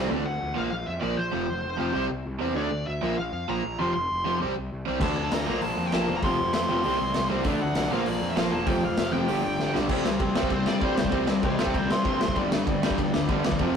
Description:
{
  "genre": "punk rock",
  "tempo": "196 BPM",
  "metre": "4/4",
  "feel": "straight",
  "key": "unclear",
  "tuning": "A4 = 440 Hz",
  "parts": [
    { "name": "cranked stack guitar", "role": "riff", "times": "0.0-13.8 s", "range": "F2 to D4", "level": "-32 LUFS", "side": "left 7 dB", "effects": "overdrive" },
    { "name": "overdriven electric guitar", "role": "riff", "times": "0.0-13.8 s", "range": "F2 to D4", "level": "-30 LUFS", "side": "right 5 dB", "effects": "none" },
    { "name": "sludgy distorted guitar", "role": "riff", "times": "0.0-0.1, 5.0-13.8 s", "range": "F2 to D4", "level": "-29 LUFS", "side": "left 1 dB", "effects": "overdrive" },
    { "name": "fuzz picked electric bass", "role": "bass", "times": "0.0-13.7 s", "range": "E1 to A2", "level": "-34 LUFS", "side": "equal", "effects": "overdrive" },
    { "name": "high-gain lead guitar", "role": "melody", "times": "0.3-12.4 s", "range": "A4 to C6", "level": "-30 LUFS", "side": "equal", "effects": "distortion" },
    { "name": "raw garage drum kit", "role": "drums", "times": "5.0-13.7 s", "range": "crash cymbal, hi-hat, kick drum, ride cymbal, snare drum", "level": "-29 LUFS", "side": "left 1 dB", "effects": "none" }
  ],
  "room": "moderate stone room reverb, RT60 1.0 s",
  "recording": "rough rehearsal-room recording, tube saturation",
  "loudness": "-23 LUFS",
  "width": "side -7 dB against mid",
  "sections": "0.1-9.9 A section; 9.9-13.8 B section",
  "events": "half time 0.1-9.9; drum fill 9.6-9.9; lead electric guitar solo 9.9-13.8",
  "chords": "0.1 D; 0.6 Bb5; 1.3 F5; 2.0 C; 2.6 D5; 3.0 Bb5; 3.8 F5; 4.4 C5; 5.0 D5; 5.5 Bb5; 6.2 F5; 6.8 C5; 7.5 D; 7.9 Bb5; 8.7 F5; 9.3 G; 9.9 C5; 12.4 G5",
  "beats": "| 0.10 0.41 0.72 1.03 | 1.34 1.64 1.95 2.26 | 2.57 2.87 3.18 3.49 | 3.79 4.10 4.41 4.71 | 5.02 5.32 5.63 5.93 | 6.24 6.54 6.85 7.15 | 7.46 7.76 8.07 8.38 | 8.68 8.99 9.30 9.60 | 9.91 10.22 10.52 10.83 | 11.14 11.45 11.76 12.07 | 12.38 12.68 12.99 13.30 | 13.61"
}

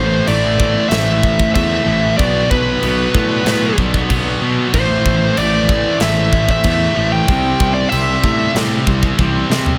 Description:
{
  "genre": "heavy metal",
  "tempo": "94 BPM",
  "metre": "4/4",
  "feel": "straight",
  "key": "unclear",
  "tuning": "A4 = 440 Hz",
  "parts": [
    { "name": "high-gain lead guitar", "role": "melody", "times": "0.0-8.5 s", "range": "B4 to G5", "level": "-21 LUFS", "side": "equal", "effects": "distortion, delay" },
    { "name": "warm analog pad", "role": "sustained chords", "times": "0.0-9.8 s", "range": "A3 to E5", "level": "-32 LUFS", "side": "equal", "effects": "none" },
    { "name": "scooped high-gain guitar", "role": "riff", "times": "0.0-9.8 s", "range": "A2 to C4", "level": "-25 LUFS", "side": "equal", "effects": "distortion" },
    { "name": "scooped high-gain guitar", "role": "riff", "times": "0.0-9.8 s", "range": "A2 to C4", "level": "-22 LUFS", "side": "equal", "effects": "distortion" },
    { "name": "fuzz picked electric bass", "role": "bass", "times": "0.0-9.7 s", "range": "A1 to C3", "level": "-21 LUFS", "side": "equal", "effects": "overdrive" },
    { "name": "tight metal drum kit", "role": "drums", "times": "0.3-9.8 s", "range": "crash cymbal, kick drum, snare drum, toms", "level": "-22 LUFS", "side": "equal", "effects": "none" }
  ],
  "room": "little or no reverb",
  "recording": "none",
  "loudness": "-15 LUFS",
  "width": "mono",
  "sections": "0.0-9.8 A section",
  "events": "drum fill 9.2-9.8",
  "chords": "0.0 Am; 2.2 Bm; 4.7 Am; 7.3 C",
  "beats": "0.28 0.91 1.55 | 2.19 2.83 3.46 4.10 | 4.74 5.37 6.01 6.64 | 7.28 7.91 8.55 9.19"
}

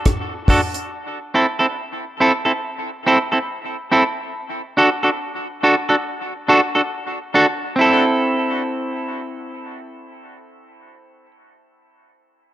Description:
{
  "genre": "dub reggae",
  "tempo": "70 BPM",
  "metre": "4/4",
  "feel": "swing 59% on 16ths",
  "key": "A dorian",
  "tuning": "A4 = 440 Hz",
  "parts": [
    { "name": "deep reggae drum kit", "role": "drums", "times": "0.1-0.9 s", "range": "hi-hat, kick drum, rim click", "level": "-18 LUFS", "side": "equal", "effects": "none" },
    { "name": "clean electric guitar", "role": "accompaniment", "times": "0.5-11.3 s", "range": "C4 to A4", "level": "-17 LUFS", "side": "right 1 dB", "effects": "dub echo" }
  ],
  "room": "wet spring reverb, RT60 2.3 s",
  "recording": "none",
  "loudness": "-16 LUFS",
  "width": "side -14 dB against mid",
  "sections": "0.0-7.8 A section; 7.8-11.2 B section",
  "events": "none",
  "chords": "0.0 D; 0.9 Am; 4.3 D; 7.8 Am",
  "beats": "0.06 | 0.91 1.77 2.63 3.49 | 4.34 5.20 6.06 6.92 | 7.78 8.63 9.49 10.35"
}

